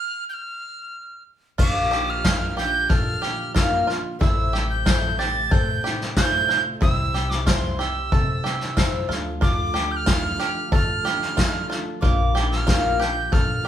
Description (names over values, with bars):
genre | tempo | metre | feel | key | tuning
indie folk with a building arrangement | 92 BPM | 4/4 | straight | unclear | A4 = 440 Hz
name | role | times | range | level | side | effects
tin whistle | melody | 0.0-13.7 s | C6 to A6 | -26 LUFS | right 4 dB | slapback echo
picked twelve-string acoustic guitar | accompaniment | 1.6-13.7 s | A2 to C5 | -30 LUFS | left 4 dB | none
mellow tonewheel organ | sustained chords | 1.6-13.7 s | C3 to E5 | -36 LUFS | right 2 dB | slow rotary speaker
bluegrass banjo | arpeggios | 1.6-13.7 s | E4 to A4 | -29 LUFS | right 4 dB | none
upright bass | bass | 1.6-13.7 s | A1 to D3 | -28 LUFS | left 1 dB | none
vintage brush drum kit | drums | 1.6-13.7 s | crash cymbal, kick drum, snare drum | -22 LUFS | left 1 dB | none
tambourine | percussion | 2.2-12.8 s | none | -38 LUFS | left 7 dB | none
room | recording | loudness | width
moderate large studio reverb, RT60 0.9 s | band playing live in one room | -19 LUFS | side -10 dB against mid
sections
0.0-1.6 A section; 1.6-13.7 B section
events
stop 0.0-1.6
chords
0.0 N.C.; 1.6 Bb; 4.2 Am; 6.8 C; 9.1 Dm; 12.0 Bb